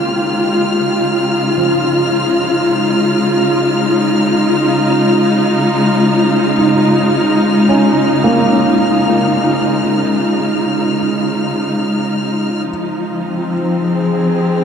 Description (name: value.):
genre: ambient.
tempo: 54 BPM.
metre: 3/4.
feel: straight.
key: Db lydian.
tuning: A4 = 440 Hz.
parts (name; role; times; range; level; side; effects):
warm symphonic string section; sustained chords; 0.0-14.6 s; Db3 to Ab4; -12 LUFS; equal; none.
rich symphonic violin section; texture; 0.0-14.6 s; F6; -23 LUFS; left 2 dB; none.
felt-muted upright piano; arpeggios; 1.6-12.7 s; F3 to Eb4; -19 LUFS; right 1 dB; ping-pong delay.
room: wet cathedral reverb, RT60 7.1 s.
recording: in a vast, echoing space.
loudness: -12 LUFS.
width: side -7 dB against mid.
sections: 0.0-12.7 A section; 12.7-14.6 A section.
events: none.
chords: 0.0 Dbadd9; 12.7 Fmadd9.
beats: 0.46 1.57 | 2.69 3.80 4.91 | 6.02 7.13 8.24 | 9.35 10.46 11.57 | 12.69 13.80.